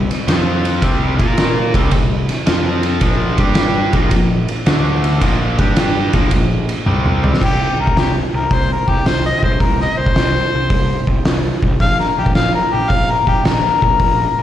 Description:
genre	blues rock power trio and southern rock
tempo	109 BPM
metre	4/4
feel	swing 68% on 8ths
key	unclear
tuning	A4 = 439 Hz
part	biting overdriven guitar	riff	0.0-7.4 s	Bb2 to Bb4	-20 LUFS	equal	spring reverb, slapback echo
part	fuzz picked electric bass	bass	0.0-14.4 s	Bb1 to Bb2	-19 LUFS	equal	overdrive
part	oversized low-tuned drum kit	drums	0.1-14.2 s	crash cymbal, hi-hat, kick drum, ride cymbal, snare drum, toms	-16 LUFS	equal	none
part	mellow harmonica	melody	7.4-14.4 s	G4 to F5	-17 LUFS	left 4 dB	overdrive, slapback echo, tape echo
room	studio reverb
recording	live gig heard through the venue's PA, recital hall reverb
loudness	-13 LUFS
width	side -11 dB against mid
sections	0.0-7.4 A section; 7.4-14.4 B section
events	drum fill 6.9-7.4; harmonica solo 7.4-14.4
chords	0.3 F5; 0.8 C5; 1.1 Bb5; 1.6 C5; 2.5 F5; 3.0 Bb5; 3.3 G5; 3.8 Bb5; 4.7 D5; 5.2 Bb5; 5.5 G5; 6.0 Bb5; 6.9 C5; 7.4 N.C.; 11.8 Bb5

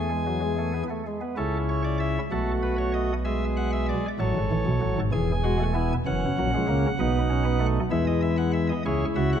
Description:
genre	classical, baroque-style 4-part fugue for pipe organ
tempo	64 BPM (dotted quarters)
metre	6/8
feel	straight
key	unclear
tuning	A4 = 440 Hz
part	chamber organ, cornet	solo	0.0-9.4 s	E1 to G#5	-23 LUFS	equal	none
room	wet scoring stage reverb, RT60 1.8 s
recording	dark, warm production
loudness	-23 LUFS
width	side -8 dB against mid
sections	0.0-1.4 A section; 1.4-8.9 B section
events	none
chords	0.0 E; 1.4 A/C#; 2.3 B7; 3.3 E7/B; 4.2 A; 5.1 E; 6.1 F#7; 7.0 B7; 7.9 E; 8.9 C#m

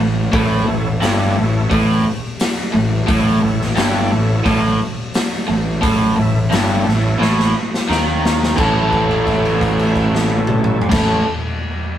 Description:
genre	blues rock power trio and southern rock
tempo	87 BPM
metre	4/4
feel	straight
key	A mixolydian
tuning	A4 = 440 Hz
part	overdriven electric guitar	riff	0.0-11.2 s	G2 to A4	-17 LUFS	equal	none
part	fuzz fingered electric bass	bass	0.0-11.2 s	G1 to D#2	-20 LUFS	equal	overdrive
part	overdriven tonewheel organ	sustained chords	0.3-11.2 s	E4 to E5	-26 LUFS	right 1 dB	slow rotary speaker, chorus vibrato
part	raw garage drum kit	drums	0.3-11.1 s	crash cymbal, hi-hat, kick drum, snare drum, toms	-20 LUFS	left 1 dB	none
room	moderate stone room reverb, RT60 1.3 s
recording	rough rehearsal-room recording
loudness	-14 LUFS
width	side -10 dB against mid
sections	0.0-8.6 A section; 8.6-11.3 B section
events	drum fill 7.2-8.6; held note 8.6-10.9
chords	0.0 A

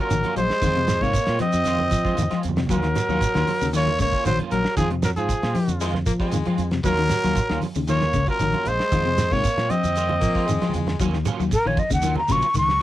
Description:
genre	afrobeat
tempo	116 BPM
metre	4/4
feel	straight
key	Eb dorian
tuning	A4 = 440 Hz
part	growling trumpet	melody	0.0-10.7 s	Ab4 to Eb5	-23 LUFS	left 1 dB	cassette tape
part	bright alto saxophone	second line	0.0-10.7 s	F3 to C4	-30 LUFS	right 8 dB	none
part	electric guitar at the edge of break-up	stabs	0.0-12.5 s	Eb3 to F4	-33 LUFS	right 7 dB	ensemble chorus, analog delay
part	electric guitar at the edge of break-up	arpeggios	0.1-12.7 s	C3 to Gb3	-26 LUFS	left 5 dB	spring reverb
part	fingered electric bass	bass	0.1-12.8 s	Bb1 to F3	-26 LUFS	equal	none
part	damped 70s drum kit	drums	0.1-12.8 s	hi-hat, kick drum, ride cymbal, snare drum	-28 LUFS	equal	cassette tape
part	shekere	percussion	0.1-12.7 s	none	-29 LUFS	right 3 dB	none
part	congas	percussion	0.2-12.8 s	none	-32 LUFS	right 6 dB	none
part	growling baritone saxophone	second line	5.8-6.7, 10.2-11.0 s	Ab3 to Bb3	-30 LUFS	left 7 dB	none
part	breathy mellow silver concert flute	melody	11.5-12.8 s	Bb4 to Db6	-20 LUFS	left 1 dB	cassette tape
room	little or no reverb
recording	home recording on cassette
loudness	-19 LUFS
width	side -14 dB against mid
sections	0.0-11.0 A section; 11.0-12.8 B section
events	drum fill 2.1-2.7, 10.6-11.0; flute solo 11.0-12.8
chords	0.0 Ebm9; 0.6 Fm7; 2.7 Ebm9; 4.8 Fm7; 6.8 Ebm9; 8.9 Fm7; 11.0 Ebm9

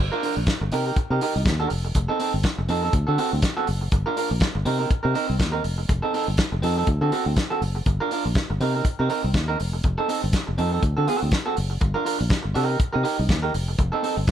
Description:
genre	disco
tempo	122 BPM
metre	4/4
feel	swing 56% on 16ths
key	G minor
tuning	A4 = 438 Hz
part	fingered electric bass	bass	0.0-14.3 s	F1 to D3	-24 LUFS	left 1 dB	none
part	electric guitar at the edge of break-up	accompaniment	0.1-14.3 s	C4 to Bb4	-25 LUFS	right 3 dB	none
part	warm soul drum kit	drums	0.2-14.3 s	hi-hat, kick drum, snare drum	-25 LUFS	equal	none
room	little or no reverb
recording	dark, warm production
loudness	-21 LUFS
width	side -10 dB against mid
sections	0.0-14.3 A section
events	none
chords	0.0 Gm7; 0.7 Cm7; 1.7 F7; 2.9 D7; 3.9 Gm7; 4.7 Cm7; 5.6 F7; 6.9 D7; 7.9 Gm7; 8.6 Cm7; 9.6 F7; 10.8 D7; 11.8 Gm7; 12.6 Cm7; 13.5 F7

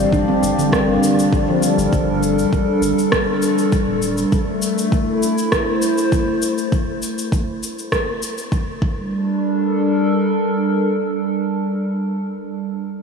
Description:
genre	organic downtempo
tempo	100 BPM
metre	4/4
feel	straight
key	G dorian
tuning	A4 = 440 Hz
part	warbly tape-like pad	sustained chords	0.0-12.3 s	G3 to F5	-18 LUFS	equal	chorus, built-in reverb, sidechain pumping
part	warm sub bass	bass	0.0-4.2 s	D1 to G1	-25 LUFS	equal	sidechain pumping
part	impact	sound effects	0.0-1.9 s	none	-31 LUFS	equal	none
part	handpan	arpeggios	0.1-1.9 s	D3 to D4	-22 LUFS	equal	low-pass filter, analog delay
part	electronic cabasa and rim click	drums	0.1-8.6 s	none	-25 LUFS	left 1 dB	overdrive
part	electronic kick drum	drums	0.1-8.9 s	none	-20 LUFS	equal	none
room	wet huge ambient reverb, RT60 8.2 s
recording	dreamy mix soaked in reverb, studio reverb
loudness	-16 LUFS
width	side -5 dB against mid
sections	0.0-9.1 A section; 9.1-11.5 B section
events	impact 0.0-1.9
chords	0.0 Gm7; 4.3 Am; 6.7 N.C.; 8.8 G5; 9.1 Gm

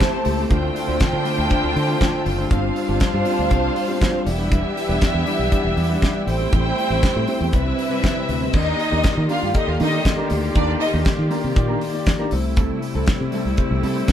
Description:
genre	disco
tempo	119 BPM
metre	4/4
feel	straight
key	unclear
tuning	A4 = 442 Hz
part	warm symphonic violin section	second line	0.0-10.9 s	B3 to A5	-24 LUFS	right 1 dB	none
part	bell-like tine electric piano	accompaniment	0.0-14.1 s	C3 to D5	-26 LUFS	left 5 dB	none
part	mellow electric guitar	accompaniment	0.0-14.1 s	G3 to C5	-29 LUFS	right 2 dB	none
part	clear studio string section	sustained chords	0.0-14.1 s	C3 to B4	-28 LUFS	right 2 dB	none
part	damped 70s drum kit	drums	0.0-14.1 s	crash cymbal, hi-hat, kick drum, snare drum	-22 LUFS	equal	none
part	fingered electric bass	bass	0.3-14.0 s	E1 to Eb3	-23 LUFS	equal	none
room	moderate studio reverb, RT60 0.8 s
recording	band playing live in one room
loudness	-18 LUFS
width	side -10 dB against mid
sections	0.0-8.5 A section; 8.5-14.1 B section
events	none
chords	0.0 Am7; 0.5 Dm7; 2.5 G7sus4; 4.3 Em7; 6.3 Am7; 7.5 Cmaj7; 8.5 Ebmaj7; 12.3 C6

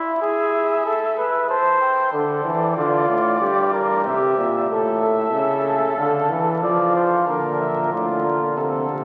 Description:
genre	classical, imitative canzona for brass ensemble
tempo	93 BPM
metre	4/4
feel	straight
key	D minor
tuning	A4 = 441 Hz
part	mellow trumpet	melody	0.0-9.0 s	A4 to A5	-27 LUFS	equal	none
part	dark trumpet	second line	0.0-9.0 s	E4 to D5	-23 LUFS	equal	none
part	warm trombone	accompaniment	2.1-9.0 s	G2 to F3	-25 LUFS	equal	none
part	warm euphonium	bass	7.3-9.0 s	A2 to C3	-31 LUFS	equal	none
room	wet cathedral reverb, RT60 4.5 s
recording	very old 78 rpm record, vinyl crackle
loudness	-20 LUFS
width	mono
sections	0.0-7.3 A section; 7.3-9.0 B section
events	none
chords	0.0 E; 0.9 Am; 2.1 Dm; 3.4 Edim/G; 4.7 A; 6.0 Dm; 7.3 Bb

